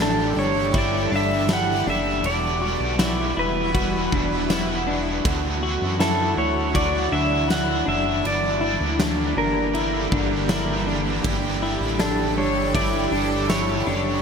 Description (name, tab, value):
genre	dream pop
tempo	80 BPM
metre	4/4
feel	straight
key	unclear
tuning	A4 = 440 Hz
part	pedal steel guitar	melody	0.0-14.2 s	A4 to F#5	-25 LUFS	equal	wide subtle chorus, ping-pong delay
part	biting overdriven guitar	accompaniment	0.0-14.2 s	D3 to A4	-29 LUFS	right 3 dB	harmonic tremolo, lush chorus
part	shimmering ambient pad	sustained chords	0.0-14.2 s	D3 to A4	-27 LUFS	right 1 dB	chorus, built-in reverb
part	clean electric guitar	arpeggios	0.0-14.2 s	D4 to F#4	-27 LUFS	left 4 dB	analog chorus, ping-pong delay
part	fat analog bass	bass	0.0-14.2 s	E1 to F#2	-28 LUFS	equal	none
part	huge arena drum kit	drums	0.7-13.7 s	kick drum, ride cymbal, snare drum, tambourine	-27 LUFS	equal	none
room	moderate lush hall reverb, RT60 2.6 s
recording	bright 1980s-style digital production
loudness	-20 LUFS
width	side -6 dB against mid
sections	0.0-14.2 A section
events	none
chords	0.0 Gsus2; 2.2 Emadd9; 5.2 Dadd9; 8.2 Gm; 11.2 Gsus2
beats	0.00 0.75 1.50 | 2.25 3.00 3.75 4.50 | 5.25 6.00 6.75 7.50 | 8.25 9.00 9.75 10.50 | 11.25 12.00 12.75 13.50